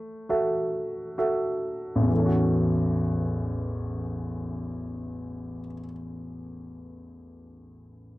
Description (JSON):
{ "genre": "pop", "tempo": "63-70 BPM", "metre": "4/4", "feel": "straight", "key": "A major", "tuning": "A4 = 442 Hz", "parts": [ { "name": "clear baby grand piano", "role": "accompaniment", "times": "0.0-8.2 s", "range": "A1 to E5", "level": "-26 LUFS", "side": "equal", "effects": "none" } ], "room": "moderate booth ambience, RT60 0.2 s", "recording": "dry, close 1970s-style studio recording", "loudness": "-25 LUFS", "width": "side -18 dB against mid", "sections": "0.0-2.1 A section; 2.1-5.9 B section", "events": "slowing down 0.0-2.1", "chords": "0.0 F#m7/A; 2.1 A6" }